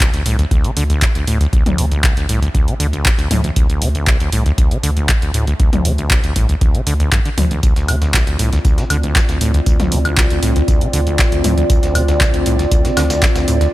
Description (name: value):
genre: acid house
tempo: 118 BPM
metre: 4/4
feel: straight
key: D minor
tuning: A4 = 439 Hz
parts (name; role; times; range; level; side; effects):
- acid bass, saw; riff; 0.0-13.7 s; C2 to D3; -18 LUFS; equal; tube saturation, sidechain pumping
- electronic kick drum; drums; 0.0-13.3 s; none; -16 LUFS; equal; none
- punchy analog drum machine; drums; 0.0-13.7 s; handclaps, hi-hat, toms, woodblock; -20 LUFS; equal; none
- round analog bass; bass; 0.3-13.6 s; C2 to D2; -17 LUFS; equal; sidechain pumping
- dark analog pad; sustained chords; 8.3-13.7 s; C4 to D5; -20 LUFS; equal; chorus, sidechain pumping
- electronic tambourine and snare drum; drums; 7.6-13.7 s; none; -28 LUFS; equal; high-pass filter on snare, sidechain pumping on perc, high-pass filter on perc
room: little or no reverb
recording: none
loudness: -13 LUFS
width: side -17 dB against mid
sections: 0.0-13.7 A section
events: none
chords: 0.0 Dm7